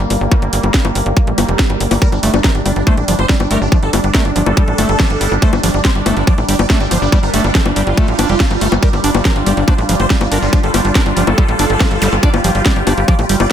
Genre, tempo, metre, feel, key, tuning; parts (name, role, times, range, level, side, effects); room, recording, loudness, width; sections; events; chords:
psychedelic trance; 141 BPM; 4/4; straight; G minor; A4 = 438 Hz
bubbling stepped-filter texture; sustained chords; 0.0-13.5 s; G3 to F4; -20 LUFS; right 1 dB; chorus, built-in reverb, sidechain pumping
tight sequencer bass; bass; 0.0-13.5 s; F1 to A1; -17 LUFS; equal
garage drum kit; drums; 0.0-13.5 s; bongos, hi-hat, snare drum; -19 LUFS; left 3 dB; overdrive
electronic kick drum; drums; 0.3-13.2 s; -12 LUFS; equal; overdrive
swell and zap; sound effects; 1.3-2.0, 12.0-12.1 s; -24 LUFS; right 4 dB
dense compressed supersaw; melody; 2.0-13.5 s; D4 to D5; -21 LUFS; right 1 dB; phaser, cassette tape, sidechain pumping, tape echo
overdriven acid bass; riff; 2.0-13.4 s; F3 to D4; -21 LUFS; equal; auto-pan, sidechain pumping, diffuse ambient delay
light reverb; -11 LUFS; side -9 dB against mid
0.0-13.5 A section
swell 1.3-2.0
0.0 G5